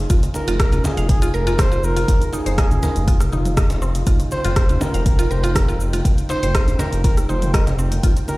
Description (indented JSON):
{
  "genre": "afro house",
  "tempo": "121 BPM",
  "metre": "4/4",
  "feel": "straight",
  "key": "F minor",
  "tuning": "A4 = 440 Hz",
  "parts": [
    { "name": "warm analog pad", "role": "sustained chords", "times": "0.0-8.4 s", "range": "Eb4 to G5", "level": "-31 LUFS", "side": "equal", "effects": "chorus, sidechain pumping" },
    { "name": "dark detuned saw bass", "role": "bass", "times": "0.0-8.1 s", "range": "F1", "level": "-21 LUFS", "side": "equal", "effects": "sidechain pumping" },
    { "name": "mallet-like synth pluck", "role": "arpeggios", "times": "0.1-8.1 s", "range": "C4 to F5", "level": "-28 LUFS", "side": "equal", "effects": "chorus, phaser, sidechain pumping, digital delay" },
    { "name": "deep house drum kit", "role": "drums", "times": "0.1-8.4 s", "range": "hi-hat, rim click, shaker, toms", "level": "-27 LUFS", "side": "equal", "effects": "none" },
    { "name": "electronic kick drum", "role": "drums", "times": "0.1-8.1 s", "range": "none", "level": "-17 LUFS", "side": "equal", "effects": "none" },
    { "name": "djembe", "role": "percussion", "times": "0.1-8.4 s", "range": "none", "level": "-28 LUFS", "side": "left 1 dB", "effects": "none" },
    { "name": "congas", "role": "percussion", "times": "0.2-8.4 s", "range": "none", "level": "-28 LUFS", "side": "right 1 dB", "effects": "none" },
    { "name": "trumpet with bucket mute", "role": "melody", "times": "0.3-8.4 s", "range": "Ab4 to C5", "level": "-26 LUFS", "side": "right 1 dB", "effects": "digital delay" }
  ],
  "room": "digital ambience",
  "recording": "played on a big sound system in a bare room, large studio reverb",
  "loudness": "-16 LUFS",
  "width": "side -20 dB against mid",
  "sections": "0.0-8.4 A section",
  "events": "none",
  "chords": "0.0 Fm11"
}